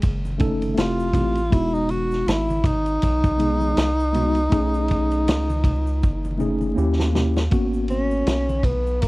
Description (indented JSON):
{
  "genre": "hip hop, jazz-hop",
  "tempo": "80 BPM",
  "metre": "4/4",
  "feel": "swing 57% on 16ths",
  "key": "G# minor",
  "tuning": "A4 = 439 Hz",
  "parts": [
    { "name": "breathy tenor saxophone", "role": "melody", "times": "0.0-9.1 s", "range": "G#3 to F#4", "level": "-24 LUFS", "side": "equal", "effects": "none" },
    { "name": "round analog bass", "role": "bass", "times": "0.0-9.1 s", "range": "E1 to D#2", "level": "-24 LUFS", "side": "equal", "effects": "none" },
    { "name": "vintage drum kit", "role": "drums", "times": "0.0-9.1 s", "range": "hi-hat, kick drum, ride cymbal, snare drum", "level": "-22 LUFS", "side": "equal", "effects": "none" },
    { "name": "congas and tube shaker", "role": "percussion", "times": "0.0-9.1 s", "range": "none", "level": "-33 LUFS", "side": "right 1 dB", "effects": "none" },
    { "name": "mellow tine electric piano", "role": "accompaniment", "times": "0.4-8.5 s", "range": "G#3 to A4", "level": "-24 LUFS", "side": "left 1 dB", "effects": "medium stereo tremolo" }
  ],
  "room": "little or no reverb",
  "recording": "dry, close 1970s-style studio recording, vinyl crackle",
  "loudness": "-19 LUFS",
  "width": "side -20 dB against mid",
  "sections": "0.0-7.5 A section; 7.5-9.1 B section",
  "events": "drum fill 6.0-7.5; tenor saxophone solo 7.5-9.1",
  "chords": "0.0 B13 (rootless); 0.8 Fmaj9; 1.5 Emaj9; 4.5 B13; 6.8 D#7b9; 7.5 G#m11",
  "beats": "0.02 0.77 | 1.52 2.27 3.02 3.77 | 4.52 5.27 6.02 6.77 | 7.52 8.27 9.02"
}